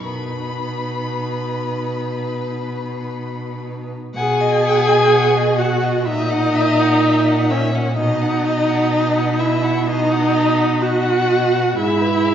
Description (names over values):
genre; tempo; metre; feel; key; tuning
classical, slow romantic movement for string quartet; 58-64 BPM; 4/4; rubato; B major; A4 = 440 Hz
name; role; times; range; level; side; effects
warm violin; melody; 0.0-12.3 s; C#5 to B5; -25 LUFS; left 6 dB; none
warm violin; second line; 0.0-12.3 s; G#4 to F#5; -25 LUFS; left 2 dB; none
warm viola; accompaniment; 0.0-12.3 s; C#4 to G#4; -18 LUFS; right 2 dB; none
rich cello; bass; 0.0-12.3 s; G#2 to B2; -22 LUFS; right 1 dB; none
room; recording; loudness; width
wet scoring stage reverb, RT60 1.8 s; heard from further back in the room, nothing above 7.5 kHz; -15 LUFS; side -9 dB against mid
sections
0.0-4.2 A section; 4.2-12.3 B section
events
none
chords
0.0 B; 6.1 F#7/A#; 8.0 B; 11.8 G#m